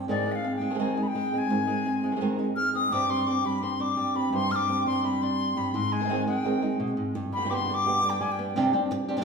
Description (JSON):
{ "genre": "flamenco", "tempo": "170 BPM", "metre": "4/4", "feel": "straight", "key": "unclear", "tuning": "A4 = 440 Hz", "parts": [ { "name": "flamenco guitar", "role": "melody", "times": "0.0-9.2 s", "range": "G2 to C5", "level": "-28 LUFS", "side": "equal", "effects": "none" }, { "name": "flamenco guitar", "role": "stabs", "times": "0.0-9.2 s", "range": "G2 to Ab4", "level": "-32 LUFS", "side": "right 4 dB", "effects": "none" }, { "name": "bright reedy wooden flute", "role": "second line", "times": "0.1-8.6 s", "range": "D5 to F6", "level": "-28 LUFS", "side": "left 4 dB", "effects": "none" } ], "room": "wet large studio reverb, RT60 1.3 s", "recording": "band playing live in one room", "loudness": "-24 LUFS", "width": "side -5 dB against mid", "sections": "0.0-8.6 A section", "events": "flute solo 0.0-8.6", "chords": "0.1 Ab; 2.9 Gsus4; 5.7 Ab; 7.2 G; 8.6 Gsus4", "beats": "| 0.08 0.44 0.79 1.15 | 1.50 1.86 2.21 2.56 | 2.92 3.27 3.62 3.98 | 4.33 4.68 5.04 5.39 | 5.74 6.09 6.45 6.80 | 7.15 7.50 7.86 8.21 | 8.56 8.91" }